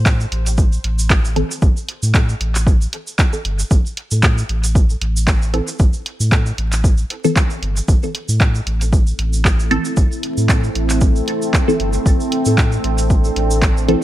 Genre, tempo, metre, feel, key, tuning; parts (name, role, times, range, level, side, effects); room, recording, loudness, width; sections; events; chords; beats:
dub techno; 115 BPM; 4/4; swing 55% on 16ths; A minor; A4 = 440 Hz
warm sub bass; bass; 0.0-14.0 s; G1 to A2; -18 LUFS; equal; tube saturation, sidechain pumping
electronic kick drum; drums; 0.1-13.7 s; -14 LUFS; equal
punchy analog drum machine; drums; 0.1-14.0 s; handclaps, hi-hat; -22 LUFS; equal
tube shaker; percussion; 0.1-13.9 s; -28 LUFS; right 3 dB
filtered dub chord stab; stabs; 1.4-14.0 s; E3 to A4; -21 LUFS; equal; phaser, dub echo
deep dark ambient pad; sustained chords; 9.2-14.0 s; A3 to A4; -22 LUFS; equal; chorus, built-in reverb, sidechain pumping
little or no reverb; vinyl crackle; -14 LUFS; side -14 dB against mid
0.0-14.0 A section
filter sweep on synth stab 0.0-14.0
0.0 Am
0.06 0.58 1.10 | 1.62 2.15 2.67 3.19 | 3.71 4.23 4.75 5.28 | 5.80 6.32 6.84 7.36 | 7.88 8.41 8.93 9.45 | 9.97 10.49 11.02 11.54 | 12.06 12.58 13.10 13.62